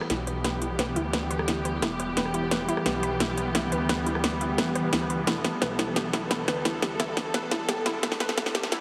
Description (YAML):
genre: dark technical drum and bass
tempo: 174 BPM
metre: 4/4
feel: straight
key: E minor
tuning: A4 = 441 Hz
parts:
  - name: muted studio string section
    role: sustained chords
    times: 0.0-8.8 s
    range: E3 to A4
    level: -32 LUFS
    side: equal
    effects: none
  - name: analog pluck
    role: arpeggios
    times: 0.0-8.8 s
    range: E4 to B4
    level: -35 LUFS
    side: equal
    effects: chorus, digital delay
  - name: drum and bass drum kit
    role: drums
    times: 0.0-8.8 s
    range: hi-hat, rim click, snare drum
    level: -31 LUFS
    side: equal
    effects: none
  - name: snarling distorted saw bass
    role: bass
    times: 0.1-8.8 s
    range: E1 to D2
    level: -38 LUFS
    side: equal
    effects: distortion, tube saturation
  - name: riser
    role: sound effects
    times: 7.3-8.8 s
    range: none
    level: -51 LUFS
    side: equal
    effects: none
room: wet lush hall reverb, RT60 1.8 s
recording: heavily compressed radio sound, high-pass filter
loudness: -27 LUFS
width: mono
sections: 0.0-8.8 A section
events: build-up 0.0-8.8; drum fill 0.0-8.8; filter sweep on synth arpeggio sound 0.0-8.8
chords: 0.0 Em